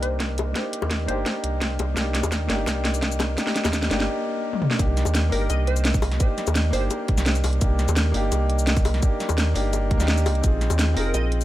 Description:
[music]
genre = liquid drum and bass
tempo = 170 BPM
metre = 4/4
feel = straight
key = C minor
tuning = A4 = 440 Hz
[part]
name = glassy wavetable pluck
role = melody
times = 0.0-1.4, 5.3-7.1, 11.0-11.3 s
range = Bb4 to Eb5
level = -33 LUFS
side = equal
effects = chorus, digital delay
[part]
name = warm concert grand piano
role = accompaniment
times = 0.0-11.4 s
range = Bb3 to Bb4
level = -28 LUFS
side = left 1 dB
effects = low-pass filter, dub echo
[part]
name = sub bass with octave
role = bass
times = 0.0-11.4 s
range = F1 to Eb2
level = -23 LUFS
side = equal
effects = none
[part]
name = garage drum kit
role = drums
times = 0.0-11.4 s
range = cabasa, hi-hat, snare drum, toms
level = -26 LUFS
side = equal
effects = none
[part]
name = electronic kick drum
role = drums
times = 0.2-10.5 s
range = none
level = -23 LUFS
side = equal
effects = high-pass filter on kick, high-pass filter on room
[part]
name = bongos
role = percussion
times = 0.4-11.2 s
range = none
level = -31 LUFS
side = left 5 dB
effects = none
[sound]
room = little or no reverb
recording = none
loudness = -20 LUFS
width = side -14 dB against mid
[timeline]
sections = 0.0-4.8 A section; 4.8-11.4 B section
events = build-up 0.0-4.8; drum fill 0.0-4.1, 4.5; break 4.1-4.8; drop 4.8-11.4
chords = 0.0 Cm9; 10.4 Bb7sus4

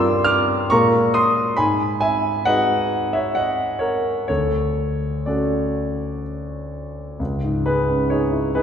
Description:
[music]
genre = classical, impressionist solo piano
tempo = 61-70 BPM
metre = 3/4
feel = rubato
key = unclear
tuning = A4 = 439 Hz
[part]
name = warm concert grand piano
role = solo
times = 0.0-8.6 s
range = C#2 to F6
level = -18 LUFS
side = equal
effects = none
[sound]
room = wet concert hall reverb, RT60 1.9 s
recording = heard from further back in the room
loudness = -18 LUFS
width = side -8 dB against mid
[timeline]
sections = 0.0-7.2 A section; 7.2-8.6 B section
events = none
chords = 0.0 Gm7; 0.7 A#m7; 1.6 G#m7; 4.3 Dmaj7; 7.2 C#madd9

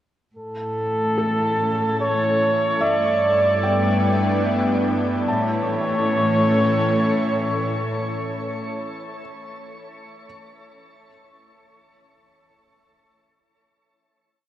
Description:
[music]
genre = ambient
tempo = 73 BPM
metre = 3/4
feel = straight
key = A mixolydian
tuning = A4 = 443 Hz
[part]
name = airy breathy pad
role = sustained chords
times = 1.2-8.5 s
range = E3 to D5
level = -25 LUFS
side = equal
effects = chorus
[part]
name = warm studio cello section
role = bass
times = 0.3-8.5 s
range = G2 to A2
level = -26 LUFS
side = equal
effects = none
[part]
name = organ-like drone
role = drone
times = 1.7-8.6 s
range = A3 to E4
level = -31 LUFS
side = equal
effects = ensemble chorus, built-in reverb
[part]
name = warm flugelhorn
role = melody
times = 0.4-8.5 s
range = A4 to D5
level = -23 LUFS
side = equal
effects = diffuse ambient delay
[part]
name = felt-muted upright piano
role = arpeggios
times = 1.2-10.3 s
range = A4 to A5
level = -29 LUFS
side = left 1 dB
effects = diffuse ambient delay
[sound]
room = wet shimmer reverb, RT60 6.8 s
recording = worn, warbling old tape, cassette tape, warbly pitch drift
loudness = -18 LUFS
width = side -12 dB against mid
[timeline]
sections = 0.3-5.3 A section; 5.3-7.7 final chord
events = fade-in on analog synth pad 0.3-5.3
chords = 0.3 A; 2.8 G; 5.3 A

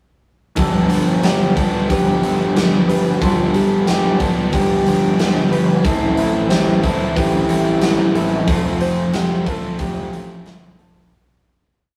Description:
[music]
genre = rock, shoegaze and dream pop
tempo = 91 BPM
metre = 4/4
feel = straight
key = G mixolydian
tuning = A4 = 440 Hz
[part]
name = electric guitar through a small old amp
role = arpeggios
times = 0.6-11.1 s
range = G4 to B4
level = -26 LUFS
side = equal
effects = none
[part]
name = overdriven electric guitar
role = riff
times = 0.6-11.1 s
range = F2 to G4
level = -23 LUFS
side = equal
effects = none
[part]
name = overdriven electric guitar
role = riff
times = 0.6-11.1 s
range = G2 to F4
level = -24 LUFS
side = equal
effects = none
[part]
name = fuzz fingered electric bass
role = bass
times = 0.6-11.1 s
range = F1 to A1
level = -25 LUFS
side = equal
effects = overdrive
[part]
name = big rock drum kit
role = drums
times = 0.6-10.9 s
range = hi-hat, kick drum, snare drum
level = -23 LUFS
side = equal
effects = none
[part]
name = soft struck synth lead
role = melody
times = 1.3-10.8 s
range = F4 to D5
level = -29 LUFS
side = equal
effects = chorus
[sound]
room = moderate studio reverb, RT60 0.6 s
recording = rough rehearsal-room recording, tube saturation, faint mains hum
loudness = -17 LUFS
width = mono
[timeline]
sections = 0.6-11.1 verse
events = fade-out 8.5-11.1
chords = 0.6 G7; 5.9 Am; 8.5 F

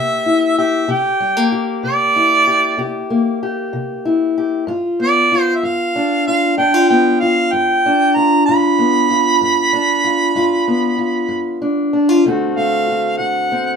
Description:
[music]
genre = acoustic country blues, solo or duo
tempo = 63 BPM (dotted quarters)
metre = 12/8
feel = straight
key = G mixolydian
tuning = A4 = 436 Hz
[part]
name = mellow harmonica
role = melody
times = 0.0-13.8 s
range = D5 to B5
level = -15 LUFS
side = right 3 dB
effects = none
[part]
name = fingerpicked steel-string acoustic guitar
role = accompaniment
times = 0.0-13.8 s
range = D2 to G4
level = -16 LUFS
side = left 2 dB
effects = none
[sound]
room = wet studio reverb, RT60 0.8 s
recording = minimal, uncompressed stereo recording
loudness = -13 LUFS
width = side -6 dB against mid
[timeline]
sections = 0.0-13.8 A section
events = none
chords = 0.0 C7; 4.7 G7; 12.2 D7

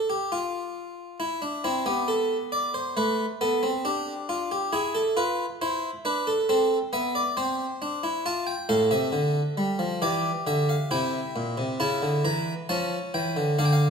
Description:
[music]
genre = classical, baroque-style 3-part fugue for harpsichord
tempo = 68 BPM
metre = 4/4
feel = straight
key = unclear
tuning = A4 = 440 Hz
[part]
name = harpsichord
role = solo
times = 0.0-13.9 s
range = A2 to Bb5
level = -24 LUFS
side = equal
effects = none
[sound]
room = wet recital hall reverb, RT60 1.6 s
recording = minimal, uncompressed stereo recording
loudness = -24 LUFS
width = side -6 dB against mid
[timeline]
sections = 0.0-13.9 A section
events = none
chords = 0.0 N.C.; 1.2 Am; 3.0 Bm7/A; 4.7 E; 6.5 Am; 8.2 Dm; 10.0 Em7b5; 11.8 A/C#

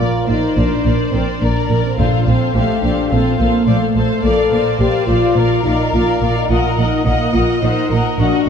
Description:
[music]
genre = cinematic, heroic adventure film score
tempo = 106 BPM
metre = 4/4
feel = straight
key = Bb major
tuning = A4 = 440 Hz
[part]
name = rich symphonic violin section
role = melody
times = 0.0-8.5 s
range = D5 to Gb5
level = -24 LUFS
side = left 5 dB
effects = none
[part]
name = warm studio violin section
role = second line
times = 0.0-8.5 s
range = F4 to Eb5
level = -25 LUFS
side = left 3 dB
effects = none
[part]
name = rich symphonic viola section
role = accompaniment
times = 0.0-8.5 s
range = A4 to Eb5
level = -23 LUFS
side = right 1 dB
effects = none
[part]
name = mellow French horn section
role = sustained chords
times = 0.0-8.5 s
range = A3 to A4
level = -18 LUFS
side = left 3 dB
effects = none
[part]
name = warm symphonic cello section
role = bass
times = 0.0-8.5 s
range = Bb2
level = -20 LUFS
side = right 2 dB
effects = none
[part]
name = warm symphonic double bass section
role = bass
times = 0.0-8.5 s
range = Bb1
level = -19 LUFS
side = right 3 dB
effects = none
[part]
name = timpani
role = percussion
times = 2.0-2.8 s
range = Bb2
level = -21 LUFS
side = equal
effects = none
[sound]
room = wet scoring stage reverb, RT60 2.0 s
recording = dark, warm production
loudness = -13 LUFS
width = side -7 dB against mid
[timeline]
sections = 0.0-8.5 A section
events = none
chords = 0.0 Bb; 2.0 F/Bb; 4.2 Bb; 6.5 Ebm/Bb

